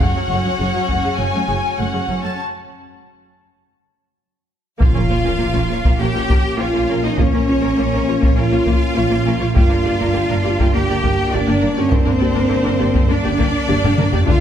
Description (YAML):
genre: cinematic, epic orchestral film score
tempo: 101 BPM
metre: 4/4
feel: straight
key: unclear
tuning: A4 = 436 Hz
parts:
  - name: clear studio violin section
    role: melody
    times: 0.0-14.3 s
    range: F4 to A5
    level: -27 LUFS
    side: left 4 dB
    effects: none
  - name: clear studio violin section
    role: second line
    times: 0.0-14.4 s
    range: Gb4 to G5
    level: -26 LUFS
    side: left 2 dB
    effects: none
  - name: rich symphonic viola section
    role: accompaniment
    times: 0.0-14.3 s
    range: Db3 to G4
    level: -25 LUFS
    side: left 1 dB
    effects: none
  - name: rich symphonic cello section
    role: bass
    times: 0.0-14.4 s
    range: Gb2 to G4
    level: -21 LUFS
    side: right 1 dB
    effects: none
  - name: warm symphonic double bass section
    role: bass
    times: 0.0-14.3 s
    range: Gb1 to D2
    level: -22 LUFS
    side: right 3 dB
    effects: none
  - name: taiko ensemble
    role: drums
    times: 0.0-1.2, 4.8-14.4 s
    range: none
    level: -18 LUFS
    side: equal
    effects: none
  - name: mellow French horn section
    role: sustained chords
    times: 4.8-14.4 s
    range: A3 to D4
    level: -24 LUFS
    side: left 5 dB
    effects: none
  - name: impact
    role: sound effects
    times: 4.8-7.2 s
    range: none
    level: -25 LUFS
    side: equal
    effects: none
room: moderate scoring stage reverb, RT60 1.9 s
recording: none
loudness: -14 LUFS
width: side -9 dB against mid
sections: 0.0-4.8 A section; 4.8-14.4 A section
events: break 2.4-4.8; impact 4.8-7.2; drum fill 13.7-14.3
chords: 0.0 Gbm; 2.4 N.C.; 4.8 Bbm; 9.6 Gm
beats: | 0.01 0.60 1.20 1.79 | 2.40 3.00 3.61 4.22 | 4.82 5.42 6.01 6.61 | 7.20 7.79 8.38 8.98 | 9.57 10.16 10.75 11.34 | 11.92 12.51 13.10 13.69 | 14.28